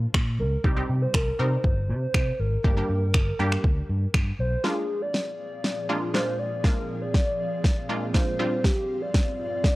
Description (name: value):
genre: dance-pop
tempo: 120 BPM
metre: 4/4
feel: straight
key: unclear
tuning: A4 = 436 Hz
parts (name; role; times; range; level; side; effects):
- vintage muted fingered electric bass; bass; 0.0-4.6 s; G1 to C3; -25 LUFS; equal; sidechain pumping
- smooth R&B drum kit; drums; 0.1-9.8 s; finger snaps, kick drum, snare drum; -23 LUFS; equal; none
- hollow clarinet-like synth lead; melody; 0.4-9.8 s; G4 to D5; -30 LUFS; equal; chorus, phaser
- wide unison pluck; accompaniment; 0.6-9.2 s; G3 to Bb4; -30 LUFS; equal; phaser, sidechain pumping
- ethereal airy pad; sustained chords; 5.1-9.8 s; G2 to F5; -35 LUFS; right 1 dB; ensemble chorus, built-in reverb, sidechain pumping
room: little or no reverb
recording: dry, gritty hardware recording, transformer saturation, cassette tape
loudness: -23 LUFS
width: side -19 dB against mid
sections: 0.0-4.6 A section; 4.6-9.8 B section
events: build-up 4.6-9.8; drum fill 4.6-9.8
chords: 0.0 N.C.; 0.6 Cm; 2.6 Gm; 4.6 Bb7; 8.4 G7sus4